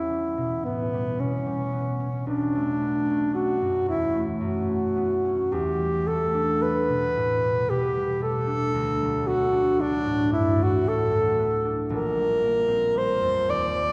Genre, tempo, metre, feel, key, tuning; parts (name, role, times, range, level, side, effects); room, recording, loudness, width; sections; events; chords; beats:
classical, impressionist duo for alto saxophone and harp; 56 BPM; 3/4; rubato; E minor; A4 = 440 Hz
clear alto saxophone; melody; 0.0-13.9 s; B3 to D5; -26 LUFS; equal
concert harp; accompaniment; 0.0-13.9 s; Bb1 to D4; -30 LUFS; equal
wet church reverb, RT60 3.1 s; recorded in a church or concert hall; -25 LUFS; mono
0.0-13.9 A section
0.0 Em6; 2.3 Bm9; 5.5 Em7; 8.7 D6; 11.9 Bb69
0.09 1.20 | 2.28 3.35 4.44 | 5.54 6.64 7.70 | 8.75 9.80 10.86 | 11.92 12.96